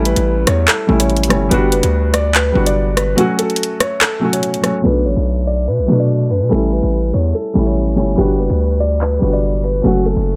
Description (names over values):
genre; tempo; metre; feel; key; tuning
hip hop, drill; 144 BPM; 4/4; half-time; B minor; A4 = 440 Hz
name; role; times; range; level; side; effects
dark grand piano; melody; 0.0-10.4 s; F#4 to D5; -22 LUFS; equal; low-pass filter
felt-muted upright piano; accompaniment; 0.0-10.4 s; F#3 to F#4; -20 LUFS; equal; low-pass filter
distorted 808-style bass; bass; 0.0-10.4 s; F#1 to B2; -19 LUFS; equal; distortion
drill drum kit; drums; 0.1-10.4 s; handclaps, hi-hat, rim click; -19 LUFS; equal; none
room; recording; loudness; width
small room ambience; low-pass filter; -15 LUFS; mono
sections
0.0-4.8 A section; 4.8-10.4 B section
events
kick muted 3.2-4.8; filter sweep 4.8-10.4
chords
0.0 A7; 1.5 Gmaj7; 3.2 F#m; 4.8 Bm7; 6.5 A7; 8.2 Gmaj7; 9.8 F#m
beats
0.26 0.68 1.10 | 1.51 1.93 2.35 2.76 | 3.18 3.60 4.01 4.43 | 4.85 5.26 5.68 6.10 | 6.51 6.93 7.35 7.76 | 8.18 8.60 9.01 9.43 | 9.85 10.26